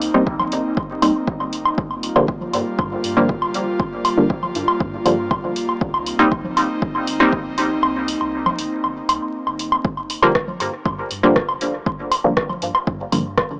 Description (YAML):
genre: dub techno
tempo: 119 BPM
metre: 4/4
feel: straight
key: G minor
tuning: A4 = 440 Hz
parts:
  - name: airy breathy pad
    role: sustained chords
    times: 0.0-9.8 s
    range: G3 to F4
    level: -27 LUFS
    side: equal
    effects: chorus, sidechain pumping
  - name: soft dub sub bass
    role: bass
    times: 0.0-13.6 s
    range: F1 to G2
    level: -41 LUFS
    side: equal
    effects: sidechain pumping
  - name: punchy analog drum machine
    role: drums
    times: 0.0-13.5 s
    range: hi-hat, rim click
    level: -27 LUFS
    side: equal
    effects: dub echo
  - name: filtered dub chord stab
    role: stabs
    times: 0.1-13.2 s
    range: D3 to Eb4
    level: -22 LUFS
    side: equal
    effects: chorus, phaser, sidechain pumping, dub echo
  - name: woodblock and congas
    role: percussion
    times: 0.1-13.5 s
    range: none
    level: -25 LUFS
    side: equal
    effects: overdrive, sidechain pumping on perc, dub echo
  - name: electronic kick drum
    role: drums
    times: 0.3-13.5 s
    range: none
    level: -26 LUFS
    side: equal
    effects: none
room: light reverb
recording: dry, gritty hardware recording, vinyl crackle, small speaker sound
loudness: -20 LUFS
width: mono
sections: 0.0-9.8 A section; 9.8-13.6 A section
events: break 7.8-9.8; filter sweep on synth stab 9.8-13.6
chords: 0.0 Cm7; 1.8 Gm7; 5.8 Cm7; 9.8 G7(no3)